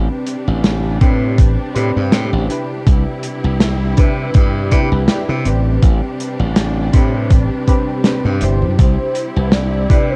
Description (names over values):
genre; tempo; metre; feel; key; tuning
vaporwave; 81 BPM; 4/4; swing 55% on 16ths; A minor; A4 = 440 Hz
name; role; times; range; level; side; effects
warbly lo-fi synth keys; accompaniment; 0.0-10.2 s; C4 to C5; -24 LUFS; equal; lush chorus, vintage 12-bit sampler grit, tape echo
clear symphonic string section; sustained chords; 0.0-10.2 s; C3 to G4; -29 LUFS; equal; none
glassy slap bass; bass; 0.0-10.2 s; G1 to C3; -19 LUFS; equal; tube saturation
warm soul drum kit; drums; 0.3-10.1 s; hi-hat, snare drum; -20 LUFS; equal; none
electronic kick drum; drums; 1.0-10.1 s; none; -14 LUFS; equal; overdrive
warm velvety synth lead; melody; 8.8-10.2 s; B4 to D5; -24 LUFS; equal; chorus, tape echo
room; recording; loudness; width
light reverb, small room ambience; echo-heavy mix, cassette tape; -15 LUFS; mono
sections
0.0-10.2 A section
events
none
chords
0.0 Am11; 2.9 Cmaj7; 5.5 Am11; 8.8 Cmaj7